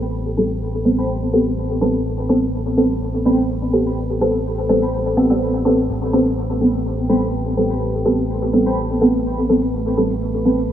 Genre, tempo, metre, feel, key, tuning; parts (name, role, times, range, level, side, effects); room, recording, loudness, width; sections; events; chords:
dub techno; 125 BPM; 4/4; swing 53% on 16ths; A minor; A4 = 440 Hz
dark analog pad; sustained chords; 0.0-10.7 s; A3 to B5; -30 LUFS; right 3 dB; chorus, phaser
filtered dub chord stab; stabs; 0.0-10.6 s; G3 to A4; -17 LUFS; equal; chorus, phaser, dub echo
soft dub sub bass; bass; 0.0-10.7 s; A1; -24 LUFS; equal; tube saturation
tambourine; percussion; 0.0-10.7 s; -64 LUFS; equal; dub echo
warbly lo-fi synth keys; riff; 1.0-8.8 s; A4 to B5; -31 LUFS; equal; chorus, dub echo
wet plate reverb, RT60 3.3 s; echo-heavy mix, vinyl crackle, low-pass filter, small room ambience; -16 LUFS; side -10 dB against mid
0.0-10.7 A section
filter sweep on synth stab 0.0-10.7; filter sweep 0.0-10.7
0.0 Am9